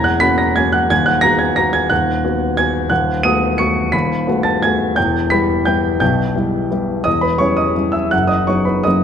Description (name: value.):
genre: classical, piano waltz.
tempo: 154-186 BPM.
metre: 3/4.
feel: rubato.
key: B major.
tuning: A4 = 441 Hz.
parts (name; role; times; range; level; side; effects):
warm grand piano; solo; 0.0-9.0 s; D#1 to D#7; -14 LUFS; equal; none.
room: moderate concert hall reverb, RT60 1.9 s.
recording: minimal, uncompressed stereo recording.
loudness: -14 LUFS.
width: side -8 dB against mid.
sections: 0.0-9.0 A section.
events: none.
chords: 0.0 F#7/E; 0.9 B/D#; 2.9 B7/D#; 5.0 Em; 7.1 C#m7b5/E; 8.1 B/F#.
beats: 0.23 0.57 | 0.91 1.23 1.57 | 1.90 2.23 2.57 | 2.90 3.24 3.59 | 3.93 4.27 4.63 | 4.96 5.31 5.66 | 6.00 6.35 6.71 | 7.06 7.41 7.77 | 8.12 8.47 8.85.